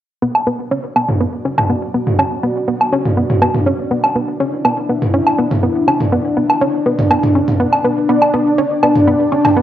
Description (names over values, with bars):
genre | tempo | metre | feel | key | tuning
melodic techno | 122 BPM | 4/4 | straight | B minor | A4 = 442 Hz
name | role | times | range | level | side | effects
dark analog pad | sustained chords | 1.5-9.6 s | D4 to G5 | -20 LUFS | left 1 dB | chorus
analog pluck | arpeggios | 0.2-9.6 s | B3 to C#4 | -18 LUFS | equal | chorus, tape echo
electronic woodblock and toms | drums | 0.3-9.5 s | none | -15 LUFS | equal | overdrive, low-pass filter on perc, low-pass filter on toms, low-pass filter on room
wide unison lead | melody | 8.1-9.6 s | D4 | -14 LUFS | equal | ensemble chorus, cassette tape, analog delay
room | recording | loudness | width
moderate digital room reverb, RT60 1.2 s | home recording on cassette | -13 LUFS | side -11 dB against mid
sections
0.2-9.6 A section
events
filter sweep on drum 0.2-9.6; filter sweep on synth arpeggio sound 0.2-9.6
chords
0.2 Bm; 8.1 G